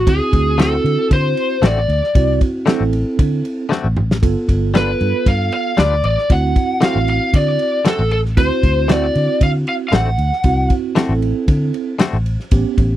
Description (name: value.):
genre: straight-eighth soul blues.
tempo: 116 BPM.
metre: 4/4.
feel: straight.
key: D mixolydian.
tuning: A4 = 439 Hz.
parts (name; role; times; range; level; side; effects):
lead guitar through a small cranked amp; melody; 0.0-10.7 s; G#4 to F#5; -18 LUFS; left 1 dB; overdrive.
vintage muted fingered electric bass; bass; 0.0-13.0 s; G1 to D3; -18 LUFS; equal; none.
mellow tine electric piano; accompaniment; 0.1-13.0 s; B3 to A4; -20 LUFS; right 5 dB; slow stereo tremolo.
warm soul drum kit; drums; 0.1-12.9 s; kick drum, ride cymbal, snare drum, toms; -15 LUFS; equal; none.
direct-recorded clean electric guitar; stabs; 0.6-12.2 s; D3 to B4; -21 LUFS; left 5 dB; tremolo.
room: little or no reverb.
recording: none.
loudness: -14 LUFS.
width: side -13 dB against mid.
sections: 0.0-13.0 A section.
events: drum fill 3.7-4.2.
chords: 0.0 D7; 4.2 G7; 6.3 D7.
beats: | 0.07 0.59 1.11 1.63 | 2.15 2.67 3.19 3.70 | 4.22 4.74 5.26 5.78 | 6.30 6.82 7.34 7.86 | 8.37 8.89 9.41 9.93 | 10.45 10.97 11.48 12.00 | 12.52.